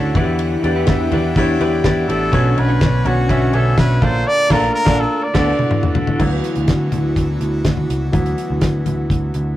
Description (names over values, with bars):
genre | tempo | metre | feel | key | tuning
piano-driven pop | 124 BPM | 4/4 | straight | D major | A4 = 436 Hz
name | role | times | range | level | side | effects
clear concert grand piano | accompaniment | 0.0-9.6 s | Bb2 to E5 | -21 LUFS | left 2 dB | none
airy breathy pad | sustained chords | 0.0-9.6 s | D3 to F#5 | -26 LUFS | equal | chorus
direct-recorded clean electric guitar | riff | 0.0-5.5 s | B2 to C#5 | -26 LUFS | right 3 dB | none
vintage muted picked electric bass | bass | 0.0-9.5 s | A1 to E2 | -19 LUFS | right 1 dB | none
dark French horn section | second line | 0.1-5.5 s | B2 to E4 | -25 LUFS | left 1 dB | none
damped 70s drum kit | drums | 0.1-9.5 s | crash cymbal, hi-hat, kick drum, ride cymbal, snare drum, toms | -19 LUFS | equal | none
warm trumpet | melody | 2.1-6.0 s | F#4 to D5 | -19 LUFS | equal | none
room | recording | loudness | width
wet booth ambience, RT60 0.2 s | rough rehearsal-room recording, warm saturation | -14 LUFS | side -14 dB against mid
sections
0.0-6.2 A section; 6.2-9.6 B section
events
band accent 4.3-6.2; drum fill 5.2-6.2; grand piano solo 6.2-9.6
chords
0.2 Em7; 2.3 Bmadd9; 4.0 Bbmaj7; 5.2 D6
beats
| 0.40 0.88 1.36 1.85 | 2.33 2.81 3.30 3.78 | 4.26 4.75 5.23 5.71 | 6.20 6.68 7.16 7.65 | 8.13 8.61 9.10